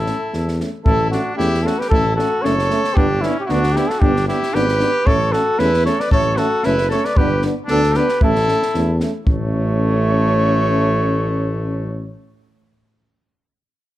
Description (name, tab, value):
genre	balkan folk, Balkan brass band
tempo	114 BPM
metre	2/4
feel	swing 55% on 16ths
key	A mixolydian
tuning	A4 = 440 Hz
part	warm flugelhorn	melody	0.0-12.1 s	E4 to D5	-20 LUFS	equal	none
part	bright trumpet	second line	0.0-12.1 s	A3 to B4	-26 LUFS	left 1 dB	none
part	mellow tuba	bass	0.0-12.1 s	F#1 to E2	-21 LUFS	equal	none
part	mellow euphonium	accompaniment	0.1-12.1 s	C#4 to D4	-26 LUFS	left 3 dB	none
part	warm euphonium	accompaniment	0.1-12.1 s	A3 to B3	-25 LUFS	right 4 dB	none
part	compact cocktail drum kit	percussion	0.1-9.5 s	kick drum, snare drum	-21 LUFS	equal	none
room	light reverb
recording	none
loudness	-15 LUFS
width	side -14 dB against mid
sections	0.9-9.3 A section; 9.3-11.4 B section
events	none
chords	0.0 A; 3.0 G; 5.1 A; 7.2 G; 8.2 A